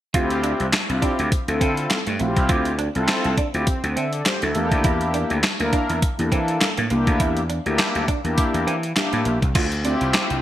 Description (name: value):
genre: early-eighties boogie funk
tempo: 102 BPM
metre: 4/4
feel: swing 56% on 16ths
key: D minor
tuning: A4 = 440 Hz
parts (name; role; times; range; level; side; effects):
- mellow synth brass; accompaniment; 0.1-10.4 s; Bb3 to E5; -23 LUFS; left 1 dB; chorus
- clean electric guitar; riff; 0.1-10.0 s; A3 to F4; -29 LUFS; right 5 dB; wide subtle chorus
- gritty slap bass; bass; 0.1-10.4 s; Bb1 to E3; -24 LUFS; equal; overdrive
- clean 12-bit digital drum machine; drums; 0.1-10.4 s; crash cymbal, handclaps, hi-hat, kick drum, snare drum; -22 LUFS; equal; overdrive, gated reverb
room: light reverb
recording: bright 1980s-style digital production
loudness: -19 LUFS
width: side -12 dB against mid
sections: 0.1-9.6 A section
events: none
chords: 0.1 Dm11; 4.6 Em7b5; 9.6 Dm11